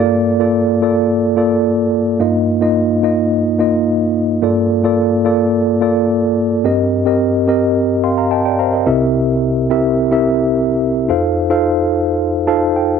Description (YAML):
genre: pop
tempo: 108 BPM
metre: 4/4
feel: straight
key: unclear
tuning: A4 = 437 Hz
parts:
  - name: mellow tine electric piano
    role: solo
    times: 0.0-13.0 s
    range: C2 to C6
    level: -13 LUFS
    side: equal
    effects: medium stereo tremolo
room: light reverb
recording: dry, close 1970s-style studio recording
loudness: -13 LUFS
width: side -6 dB against mid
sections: 0.0-8.9 A section; 8.9-13.0 B section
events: tine electric piano fill 7.8-8.9, 12.2-13.0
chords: 0.0 Bbmaj7/G; 2.2 Ebsus2/G; 4.4 Bbmaj7/G; 6.7 Cm7/G; 8.9 C7; 11.1 F7